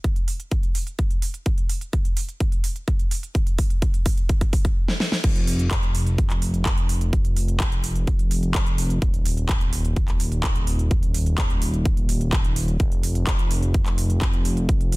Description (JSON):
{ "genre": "EDM, festival progressive house", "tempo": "127 BPM", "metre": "4/4", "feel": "straight", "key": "unclear", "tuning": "A4 = 440 Hz", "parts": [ { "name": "big-room dance drum kit", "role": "drums", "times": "0.0-15.0 s", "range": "crash cymbal, handclaps, hi-hat, snare drum", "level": "-29 LUFS", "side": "right 1 dB", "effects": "none" }, { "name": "electronic kick drum", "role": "drums", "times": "0.0-14.8 s", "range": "none", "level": "-21 LUFS", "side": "equal", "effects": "none" }, { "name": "fat analog bass", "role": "bass", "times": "5.2-15.0 s", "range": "F1", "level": "-23 LUFS", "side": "equal", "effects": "tube saturation, sidechain pumping" } ], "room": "little or no reverb", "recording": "dense, heavily limited modern master", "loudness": "-20 LUFS", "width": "side -22 dB against mid", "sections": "0.0-5.2 A section; 5.2-15.0 B section", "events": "build-up 0.0-5.2; drum fill 1.5-4.8, 4.9-5.2; drop 5.2-15.0", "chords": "none" }